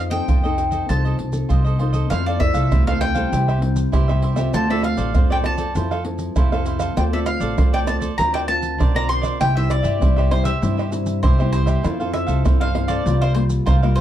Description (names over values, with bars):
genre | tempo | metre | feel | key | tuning
samba and choro | 99 BPM | 4/4 | straight | F major | A4 = 440 Hz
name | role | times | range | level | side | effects
bowl-back mandolin | melody | 0.0-14.0 s | C5 to C6 | -24 LUFS | left 1 dB | none
nylon-string guitar | accompaniment | 0.0-14.0 s | G2 to Bb4 | -26 LUFS | left 4 dB | none
upright bass | bass | 0.0-14.0 s | A1 to G2 | -22 LUFS | equal | none
cavaquinho | accompaniment | 0.1-14.0 s | D4 to F5 | -28 LUFS | right 5 dB | none
maracas, pandeiro, surdo and tamborim | percussion | 0.1-14.0 s | none | -20 LUFS | right 1 dB | none
room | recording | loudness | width
moderate studio ambience, RT60 0.5 s | dark, warm production | -17 LUFS | side -11 dB against mid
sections
0.0-2.1 A section; 2.1-14.0 B section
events
none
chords
0.0 F7; 2.1 Fmaj7; 3.3 C; 4.5 Dm7; 5.8 Fmaj7; 7.0 Dm7; 8.2 Bbadd9/D; 9.4 C; 11.8 Fmaj7; 13.1 C7sus4